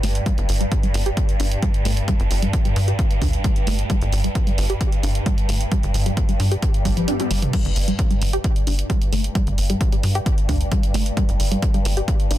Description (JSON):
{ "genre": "driving peak-time techno", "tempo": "132 BPM", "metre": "4/4", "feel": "straight", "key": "unclear", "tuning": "A4 = 439 Hz", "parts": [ { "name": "tight sequenced synth", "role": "riff", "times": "0.0-12.4 s", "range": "F3 to G4", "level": "-27 LUFS", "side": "equal", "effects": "chorus, overdrive, sidechain pumping, tape echo" }, { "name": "tight sequencer bass", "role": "bass", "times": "0.0-12.4 s", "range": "G1 to G2", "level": "-21 LUFS", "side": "equal", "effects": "sidechain pumping" }, { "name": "swarming drone", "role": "drone", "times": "0.0-12.4 s", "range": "G2", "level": "-27 LUFS", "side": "equal", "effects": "built-in reverb, sidechain pumping" }, { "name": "punchy analog drum machine", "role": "drums", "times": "0.0-12.4 s", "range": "crash cymbal, hi-hat, toms", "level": "-30 LUFS", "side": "right 1 dB", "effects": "sidechain pumping on hats, sidechain pumping on toms, sidechain pumping on cymbals" }, { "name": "electronic kick drum", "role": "drums", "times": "0.3-12.2 s", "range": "none", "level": "-20 LUFS", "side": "equal", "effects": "none" }, { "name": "swell", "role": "sound effects", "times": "6.8-7.5 s", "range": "none", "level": "-34 LUFS", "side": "left 4 dB", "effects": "none" } ], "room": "digital ambience", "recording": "dense, heavily limited modern master", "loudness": "-18 LUFS", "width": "side -14 dB against mid", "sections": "0.0-12.4 A section", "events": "filter sweep on synth arpeggio sound 0.0-12.4; swell 6.8-7.5; kick drops out 7.1-7.5; drum fill 7.1-7.5", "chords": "0.0 G5" }